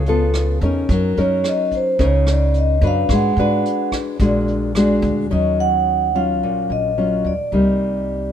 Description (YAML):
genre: bossa nova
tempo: 109 BPM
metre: 4/4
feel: straight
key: Eb minor from 5.3 s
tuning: A4 = 440 Hz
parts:
  - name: nylon-string guitar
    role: accompaniment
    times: 0.0-8.3 s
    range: A#2 to B4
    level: -19 LUFS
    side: left 1 dB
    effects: none
  - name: upright bass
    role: bass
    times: 0.0-8.3 s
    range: A#1 to G#2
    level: -21 LUFS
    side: equal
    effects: none
  - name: vintage brush drum kit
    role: drums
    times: 0.1-5.2 s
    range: hi-hat, kick drum, rim click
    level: -24 LUFS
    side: equal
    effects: none
  - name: vibraphone with soft mallets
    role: melody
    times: 0.9-8.3 s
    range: A#4 to F#5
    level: -20 LUFS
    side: right 1 dB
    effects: none
room: little or no reverb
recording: minimal, uncompressed stereo recording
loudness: -15 LUFS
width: side -9 dB against mid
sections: 0.0-5.3 A section; 5.3-8.3 B section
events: vibraphone solo 0.0-5.3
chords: 0.0 C#7alt; 0.9 F#6; 3.1 G#m7b5; 4.2 A#aug7; 5.3 Ebm9; 7.5 Cm7